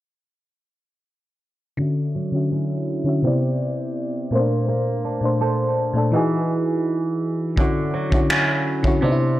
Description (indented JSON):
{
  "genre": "contemporary R&B",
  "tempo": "83 BPM",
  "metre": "4/4",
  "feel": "straight",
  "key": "unclear",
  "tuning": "A4 = 440 Hz",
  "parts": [
    { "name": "FM electric piano", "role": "accompaniment", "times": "1.8-9.4 s", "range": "Bb2 to E5", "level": "-21 LUFS", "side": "left 1 dB", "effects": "chorus, low-pass filter" },
    { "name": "flamenco guitar", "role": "arpeggios", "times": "1.8-9.4 s", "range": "C3 to C5", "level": "-25 LUFS", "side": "right 4 dB", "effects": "low-pass filter, tape echo" },
    { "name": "soft brush drum kit", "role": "drums", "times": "7.6-9.0 s", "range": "finger snaps, kick drum", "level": "-20 LUFS", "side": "equal", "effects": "none" }
  ],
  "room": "light reverb, studio ambience",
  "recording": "none",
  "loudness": "-19 LUFS",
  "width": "side -15 dB against mid",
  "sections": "1.8-9.4 A section",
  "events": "filter sweep 1.8-9.4",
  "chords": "1.8 Dmaj9; 3.2 Cmaj9; 4.3 Bbmaj9; 6.1 Emaj9; 7.6 Dmaj9"
}